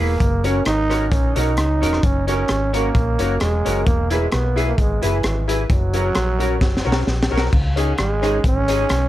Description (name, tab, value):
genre	ska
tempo	131 BPM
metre	4/4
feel	swing 54% on 8ths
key	unclear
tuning	A4 = 439 Hz
part	growling trombone	melody	0.0-9.1 s	E3 to D#4	-23 LUFS	right 3 dB	dub echo
part	semi-hollow electric guitar	accompaniment	0.0-8.8 s	C#4 to B4	-28 LUFS	right 3 dB	analog chorus
part	hollow-body short-scale fingered electric bass	bass	0.0-9.1 s	E1 to C#2	-21 LUFS	equal	none
part	crunchy breakbeat drum kit	drums	0.0-9.0 s	crash cymbal, hi-hat, kick drum, rim click, snare drum	-21 LUFS	equal	none
part	bright upright piano	stabs	0.4-8.8 s	C#4 to B4	-26 LUFS	left 5 dB	dub echo
room	small room ambience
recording	none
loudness	-16 LUFS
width	side -14 dB against mid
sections	0.0-7.5 A section; 7.5-9.1 B section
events	drum fill 6.6-7.5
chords	0.0 E; 5.7 F#; 7.5 C#sus2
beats	| 0.21 0.66 1.12 1.58 | 2.04 2.50 2.95 3.41 | 3.87 4.33 4.79 5.24 | 5.70 6.16 6.62 7.08 | 7.53 7.99 8.45 8.91